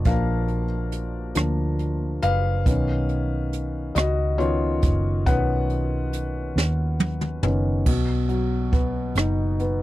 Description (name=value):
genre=six-eight pop ballad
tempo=46 BPM (dotted quarters)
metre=6/8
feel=straight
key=unclear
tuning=A4 = 441 Hz
part: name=felt-muted upright piano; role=accompaniment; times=0.0-9.8 s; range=B2 to F#5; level=-26 LUFS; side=left 2 dB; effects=none
part: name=vintage muted fingered electric bass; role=bass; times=0.0-9.8 s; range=F#1 to D#2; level=-24 LUFS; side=right 1 dB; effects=none
part: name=jazz brush drum kit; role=drums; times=0.0-9.8 s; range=crash cymbal, hi-hat, kick drum, rim click, snare drum, toms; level=-24 LUFS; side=right 1 dB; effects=none
room=little or no reverb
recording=dry, close 1970s-style studio recording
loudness=-21 LUFS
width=side -16 dB against mid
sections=0.0-7.9 A section; 7.9-9.8 B section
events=felt piano solo 0.0-7.9; drum fill 6.6-7.9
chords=0.0 A#; 2.7 Badd9; 7.9 B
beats=| 0.06 1.36 | 2.66 3.96 | 5.26 6.56 | 7.86 9.16